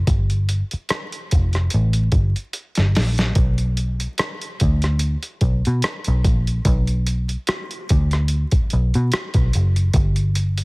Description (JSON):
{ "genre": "R&B, neo-soul", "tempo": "73 BPM", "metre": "4/4", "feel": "swing 55% on 16ths", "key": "B minor", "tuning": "A4 = 438 Hz", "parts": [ { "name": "vintage muted picked electric bass", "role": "bass", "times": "0.0-10.6 s", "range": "F1 to B2", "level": "-18 LUFS", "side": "equal", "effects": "none" }, { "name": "boom bap sampler-style drum kit", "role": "drums", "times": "0.1-10.6 s", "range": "hi-hat, kick drum, rim click, snare drum", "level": "-20 LUFS", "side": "equal", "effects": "none" } ], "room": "little or no reverb", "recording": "heavily compressed radio sound, vinyl crackle", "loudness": "-17 LUFS", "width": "side -29 dB against mid", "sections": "0.0-3.4 A section; 3.4-10.6 B section", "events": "drum fill 2.5-3.4", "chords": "none" }